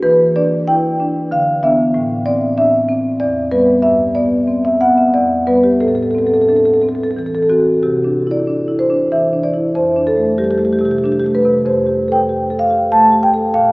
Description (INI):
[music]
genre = classical, contemporary piece for solo marimba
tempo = 87-97 BPM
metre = 3/4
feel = rubato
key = A dorian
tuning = A4 = 439 Hz
[part]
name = marimba with soft mallets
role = solo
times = 0.0-13.7 s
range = E2 to A5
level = -12 LUFS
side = equal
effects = none
[sound]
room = wet cathedral reverb, RT60 5.3 s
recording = heard from further back in the room, small speaker sound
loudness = -12 LUFS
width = side -25 dB against mid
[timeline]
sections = 0.0-7.8 A section; 7.8-13.7 B section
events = none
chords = 0.0 Em7; 1.3 Dm6; 1.9 Am; 3.2 Em7; 3.8 G; 5.1 Em7; 5.8 Amadd11; 7.8 Cadd9; 9.8 F69; 11.7 Fadd9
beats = | 0.02 0.68 1.31 | 1.93 2.56 3.19 | 3.82 4.46 5.12 | 5.80 6.49 7.17 | 7.83 8.47 9.12 | 9.76 10.39 11.03 | 11.66 12.29 12.93 | 13.55